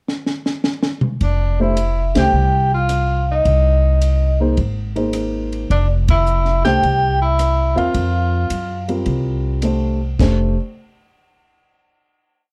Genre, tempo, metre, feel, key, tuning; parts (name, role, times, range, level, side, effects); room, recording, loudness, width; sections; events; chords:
jazz, small-group swing and bop; 107 BPM; 4/4; swing 69% on 8ths; A4 = 442 Hz
compact cocktail drum kit; drums; 0.1-10.4 s; crash cymbal, hi-hat, kick drum, ride cymbal, rim click, snare drum, toms; -23 LUFS; equal
vibraphone with soft mallets; melody; 1.2-8.9 s; D5 to G5; -23 LUFS; equal
breathy tenor saxophone; second line; 1.2-8.9 s; D4 to G4; -25 LUFS; equal
upright bass; bass; 1.2-10.6 s; F1 to Gb2; -20 LUFS; equal
dark baby grand piano; accompaniment; 1.6-10.6 s; G3 to F5; -23 LUFS; equal
light reverb; dark, warm production; -18 LUFS; mono
0.0-1.2 pickup bar; 1.2-10.2 A section; 10.2-12.4 final chord
drum fill 0.1-1.2; band accent 2.0, 6.0
0.0 N.C.; 1.2 Fmaj9; 3.5 Abadd9; 5.7 Fmaj7sus2; 10.2 Fadd9